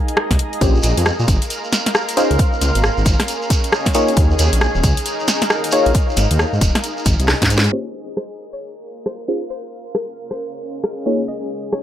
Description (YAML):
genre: UK garage, two-step garage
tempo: 135 BPM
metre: 4/4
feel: swing 62% on 16ths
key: Bb minor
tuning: A4 = 439 Hz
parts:
  - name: granular cloud pad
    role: texture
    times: 0.0-11.8 s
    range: Db4 to C6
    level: -25 LUFS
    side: equal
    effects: built-in reverb, sidechain pumping
  - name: house drum kit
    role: drums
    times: 0.1-11.8 s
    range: crash cymbal, hi-hat, rim click, snare drum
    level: -19 LUFS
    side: equal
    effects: overdrive, low-pass filter on hats, low-pass filter on snare, low-pass filter on cymbals
  - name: dark detuned saw bass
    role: bass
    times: 0.3-7.7 s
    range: Eb1 to Bb2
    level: -17 LUFS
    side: equal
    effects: tube saturation
  - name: electronic kick drum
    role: drums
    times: 0.3-7.5 s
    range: none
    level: -17 LUFS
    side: equal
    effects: overdrive
  - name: deep mellow chord stab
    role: stabs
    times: 0.6-11.2 s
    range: Bb3 to Db5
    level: -19 LUFS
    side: left 1 dB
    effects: chorus, digital delay
  - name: shekere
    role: percussion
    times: 0.6-7.7 s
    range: none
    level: -26 LUFS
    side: right 2 dB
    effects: none
  - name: string-like resonator pluck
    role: melody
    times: 7.7-11.8 s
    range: Bb4 to Eb5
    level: -32 LUFS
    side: left 5 dB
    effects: chorus, phaser, digital delay
room: light reverb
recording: low-pass filter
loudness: -15 LUFS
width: side -11 dB against mid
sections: 0.0-7.7 A section; 7.7-11.8 B section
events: drum fill 7.3-7.7; band accent 7.6; filter sweep on drum 7.7-11.8; filter sweep 7.7-11.8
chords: 0.0 Ab; 0.6 Bbm69; 2.2 Dbmaj7; 3.9 Eb7sus4; 5.9 Ab; 7.7 Bbm69; 9.3 Dbmaj7; 11.1 Eb7sus4